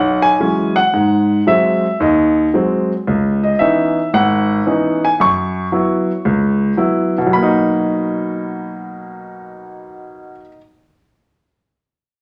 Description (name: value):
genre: solo jazz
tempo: 113 BPM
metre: 4/4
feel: swing 69% on 8ths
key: B major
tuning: A4 = 440 Hz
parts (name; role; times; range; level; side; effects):
- warm baby grand piano; solo; 0.0-10.6 s; G#1 to C#6; -16 LUFS; equal; none
room: wet large studio reverb, RT60 0.8 s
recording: none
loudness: -15 LUFS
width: mono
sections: 0.0-7.3 A section; 7.3-11.6 B section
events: none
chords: 0.0 E69; 0.9 G#7; 3.1 C#m9; 5.2 F#7sus4; 7.3 Bmaj7